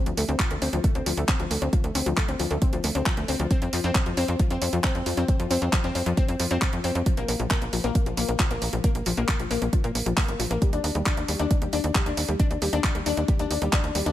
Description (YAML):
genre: uplifting trance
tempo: 135 BPM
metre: 4/4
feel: straight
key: unclear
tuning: A4 = 441 Hz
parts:
  - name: analog pluck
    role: arpeggios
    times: 0.1-14.1 s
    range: F3 to D4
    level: -28 LUFS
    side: left 4 dB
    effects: chorus, sidechain pumping, ping-pong delay
  - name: tight sequencer bass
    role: bass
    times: 0.1-14.1 s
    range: G1 to Bb2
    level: -27 LUFS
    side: equal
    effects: sidechain pumping
  - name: house drum kit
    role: drums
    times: 0.1-14.1 s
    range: handclaps, hi-hat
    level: -29 LUFS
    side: right 1 dB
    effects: none
  - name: electronic kick drum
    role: drums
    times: 0.4-13.8 s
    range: none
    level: -24 LUFS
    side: equal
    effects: none
room: little or no reverb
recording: none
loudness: -22 LUFS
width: side -13 dB against mid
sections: 0.0-14.1 A section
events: none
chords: 0.0 Dm7; 3.5 F5; 7.1 Bb5; 10.6 Ebmaj7